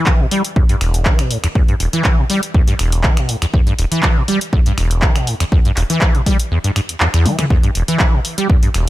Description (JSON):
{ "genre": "acid house", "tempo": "121 BPM", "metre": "4/4", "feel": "straight", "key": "E minor", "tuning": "A4 = 440 Hz", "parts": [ { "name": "acid bass, saw", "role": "riff", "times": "0.0-8.9 s", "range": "E1 to G3", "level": "-17 LUFS", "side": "equal", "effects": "tube saturation, ensemble chorus, sidechain pumping, digital delay" }, { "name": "electronic kick drum", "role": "drums", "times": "0.1-8.6 s", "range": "none", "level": "-13 LUFS", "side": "equal", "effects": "none" }, { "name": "punchy analog drum machine", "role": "drums", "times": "0.1-8.8 s", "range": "finger snaps, handclaps, hi-hat, toms", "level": "-20 LUFS", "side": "equal", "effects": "none" } ], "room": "little or no reverb", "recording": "none", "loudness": "-13 LUFS", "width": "side -16 dB against mid", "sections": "0.0-8.9 A section", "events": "kick drops out 6.5-7.5; drum fill 7.3", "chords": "none" }